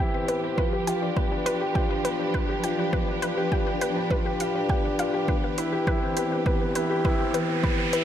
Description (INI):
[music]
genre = piano and strings electronica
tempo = 102 BPM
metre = 4/4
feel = straight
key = unclear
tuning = A4 = 441 Hz
[part]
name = warm symphonic string section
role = sustained chords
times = 0.0-8.0 s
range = E3 to B4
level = -30 LUFS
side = right 2 dB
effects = sidechain pumping, low-pass filter
[part]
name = wide unison pluck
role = arpeggios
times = 0.0-8.0 s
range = B4 to G5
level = -32 LUFS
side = left 1 dB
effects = sidechain pumping, ping-pong delay
[part]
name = warm concert grand piano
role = riff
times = 0.0-8.0 s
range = B3 to G4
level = -27 LUFS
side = left 2 dB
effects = ping-pong delay
[part]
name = electronic hi-hat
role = drums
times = 0.3-8.0 s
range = none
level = -35 LUFS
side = right 2 dB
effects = overdrive, studio reverb
[part]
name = electronic kick drum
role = drums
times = 0.6-7.8 s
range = none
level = -27 LUFS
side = right 1 dB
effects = overdrive, studio reverb
[part]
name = riser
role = sound effects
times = 6.5-8.0 s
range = none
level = -33 LUFS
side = right 4 dB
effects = none
[sound]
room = moderate concert hall reverb, RT60 2.4 s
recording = none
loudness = -23 LUFS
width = side -10 dB against mid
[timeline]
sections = 0.0-8.0 A section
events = build-up 0.0-8.0; filter sweep on string section 0.0-8.0; riser 6.5-8.0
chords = 0.0 Cmaj7; 0.6 G7; 5.3 Cmaj7